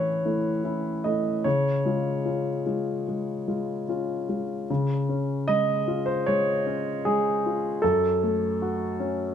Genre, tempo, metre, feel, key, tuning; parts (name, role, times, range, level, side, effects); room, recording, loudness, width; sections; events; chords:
neoclassical minimalist piano; 76 BPM; 4/4; rubato; Db major; A4 = 440 Hz
warm baby grand piano; solo; 0.0-9.3 s; Gb2 to Eb5; -24 LUFS; equal
moderate studio reverb, RT60 0.6 s; band playing live in one room; -24 LUFS; side -8 dB against mid
0.0-4.7 A section; 4.7-9.3 A section
0.0 A; 1.4 Db; 7.8 Gbm